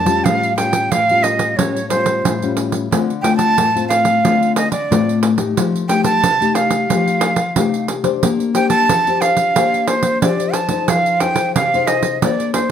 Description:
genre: samba and choro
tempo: 90 BPM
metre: 4/4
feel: straight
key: unclear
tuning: A4 = 440 Hz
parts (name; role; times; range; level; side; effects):
- breathy bright jazz flute; melody; 0.0-12.7 s; C5 to A5; -16 LUFS; right 3 dB; plate reverb
- nylon-string guitar; accompaniment; 0.0-12.7 s; F2 to C5; -18 LUFS; left 6 dB; none
- pandeiro; percussion; 0.1-12.7 s; none; -20 LUFS; right 5 dB; none
room: wet studio reverb, RT60 0.6 s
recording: none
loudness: -14 LUFS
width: side -9 dB against mid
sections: 0.0-12.7 A section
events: none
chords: 0.3 A7alt; 2.9 Dm7; 5.6 F9; 8.2 Bb69; 10.9 Fm7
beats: | 0.26 0.92 1.58 2.25 | 2.91 3.58 4.24 4.91 | 5.57 6.24 6.90 7.57 | 8.23 8.89 9.56 10.23 | 10.89 11.56 12.22

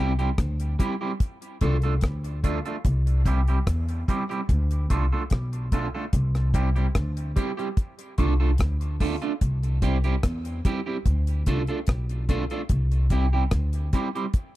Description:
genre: dub reggae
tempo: 73 BPM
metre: 4/4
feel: straight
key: C major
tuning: A4 = 441 Hz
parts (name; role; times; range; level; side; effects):
- electric guitar at the edge of break-up; accompaniment; 0.0-14.3 s; G3 to A4; -30 LUFS; right 3 dB; phaser, dub echo
- upright bass; bass; 0.0-13.9 s; B1 to E2; -24 LUFS; equal; none
- deep reggae drum kit; drums; 0.2-14.5 s; hi-hat, kick drum, rim click; -24 LUFS; equal; none
room: little or no reverb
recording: dry, close 1970s-style studio recording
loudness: -22 LUFS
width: side -16 dB against mid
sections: 0.0-14.6 A section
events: none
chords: 0.0 C; 1.2 Dm; 2.8 C; 4.5 Dm; 6.1 C; 7.8 Dm; 9.4 C; 11.1 Dm; 12.7 C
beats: 0.38 1.20 2.02 | 2.85 3.67 4.49 5.31 | 6.13 6.95 7.77 8.59 | 9.41 10.23 11.06 11.88 | 12.70 13.52 14.34

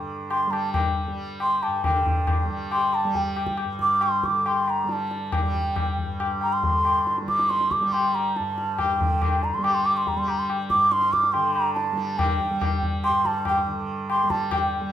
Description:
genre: indian classical, Hindustani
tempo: 139 BPM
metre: 4/4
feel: straight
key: G raga bhimpalasi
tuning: A4 = 440 Hz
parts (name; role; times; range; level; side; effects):
- tanpura; drone; 0.0-14.9 s; G2 to G3; -31 LUFS; right 3 dB; none
- bansuri; melody; 0.3-14.7 s; G5 to D6; -23 LUFS; right 2 dB; none
- tabla; percussion; 0.3-14.7 s; none; -26 LUFS; left 4 dB; none
room: moderate recital hall reverb, RT60 1.4 s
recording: minimal, uncompressed stereo recording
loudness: -21 LUFS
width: side -11 dB against mid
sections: 0.0-1.8 A section; 1.8-14.9 B section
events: speeding up 0.0-14.9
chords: none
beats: | 0.09 0.53 0.97 1.41 | 1.84 2.28 2.72 3.16 | 3.59 4.03 4.47 4.90 | 5.33 5.77 6.20 6.63 | 7.07 7.50 7.93 8.36 | 8.79 9.21 9.64 10.07 | 10.50 10.92 11.35 11.77 | 12.20 12.62 13.04 13.46 | 13.88 14.30 14.72

